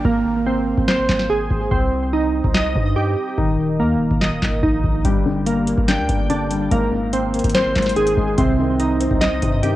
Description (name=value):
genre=hip hop, trap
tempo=144 BPM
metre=4/4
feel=half-time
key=unclear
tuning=A4 = 441 Hz
part: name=glassy digital keys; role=arpeggios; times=0.0-9.8 s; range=Eb3 to G5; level=-19 LUFS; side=right 1 dB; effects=chorus, cassette tape, tape echo
part: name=long sustained 808-style bass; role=bass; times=0.0-9.8 s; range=Eb1 to G2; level=-24 LUFS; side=equal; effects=none
part: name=booming analog drum machine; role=drums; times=0.0-9.7 s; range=handclaps, hi-hat, kick drum, snare drum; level=-20 LUFS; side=equal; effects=cassette tape
part: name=downlifter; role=sound effects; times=0.0-1.7 s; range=none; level=-44 LUFS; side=equal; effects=none
part: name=felt-muted upright piano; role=accompaniment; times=5.0-9.8 s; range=G2 to Eb4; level=-23 LUFS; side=left 4 dB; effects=cassette tape
room=light reverb, digital ambience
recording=home recording on cassette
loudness=-16 LUFS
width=side -15 dB against mid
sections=0.0-9.8 A section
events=break 0.0-5.0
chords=0.0 Abadd9; 1.7 Cm; 3.4 Eb5; 5.0 Gm; 6.7 Abadd9; 8.4 Cm